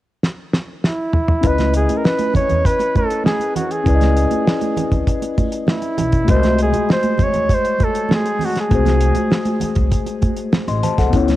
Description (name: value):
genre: lush 1970s-style soul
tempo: 99 BPM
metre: 4/4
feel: straight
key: C# minor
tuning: A4 = 438 Hz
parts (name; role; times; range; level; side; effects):
- cloth-damped thuddy drum kit; drums; 0.2-11.4 s; hi-hat, kick drum, snare drum, toms; -18 LUFS; equal; cassette tape
- clear flugelhorn; melody; 0.9-9.8 s; E4 to C#5; -20 LUFS; right 2 dB; cassette tape, tape echo
- mellow tine electric piano; accompaniment; 1.4-11.4 s; G#3 to B#5; -21 LUFS; left 6 dB; medium stereo tremolo
- upright bass; bass; 1.4-11.4 s; A1 to E2; -18 LUFS; equal; transformer saturation
- congas; percussion; 1.4-11.4 s; none; -26 LUFS; right 7 dB; none
room: light reverb, studio reverb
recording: home recording on cassette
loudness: -15 LUFS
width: side -15 dB against mid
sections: 0.0-1.4 A section; 1.4-11.4 B section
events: drum fill 0.2-1.4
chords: 0.0 N.C.; 1.4 C#m9; 6.3 G#7b9/B#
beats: 0.23 0.83 | 1.44 2.04 2.65 3.25 | 3.86 4.47 5.07 5.68 | 6.29 6.89 7.50 8.10 | 8.71 9.31 9.92 10.53 | 11.13